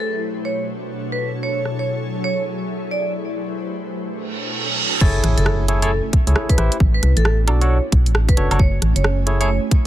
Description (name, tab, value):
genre	UK garage, two-step garage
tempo	134 BPM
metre	4/4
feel	swing 62% on 16ths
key	F# minor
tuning	A4 = 439 Hz
part	vibraphone with medium mallets	melody	0.0-9.5 s	A4 to D5	-26 LUFS	right 1 dB	tape echo
part	ethereal airy pad	sustained chords	0.0-9.9 s	F#3 to G#5	-27 LUFS	equal	ensemble chorus, built-in reverb, sidechain pumping
part	garage drum kit	drums	1.7-1.8, 5.0-9.8 s	crash cymbal, hi-hat, rim click, woodblock	-23 LUFS	right 2 dB	none
part	reverse cymbal and impact	sound effects	4.3-6.8 s	none	-24 LUFS	right 3 dB	none
part	barky tine electric piano	stabs	5.0-9.5 s	D4 to D5	-24 LUFS	equal	overdrive, tape echo
part	organ-like FM bass	bass	5.0-9.6 s	F#1 to C#2	-17 LUFS	equal	none
part	electronic kick drum	drums	5.0-9.8 s	none	-15 LUFS	equal	none
room	little or no reverb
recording	none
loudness	-17 LUFS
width	side -13 dB against mid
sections	0.0-5.0 A section; 5.0-9.9 B section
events	reverse cymbal 4.3-5.0; drop 5.0-9.9; impact 5.0-6.8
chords	0.3 Bm7; 1.4 F#m7; 3.0 Am7; 3.9 Bm7; 5.0 F#m7; 6.6 Am7; 7.5 Bm7; 8.6 F#m7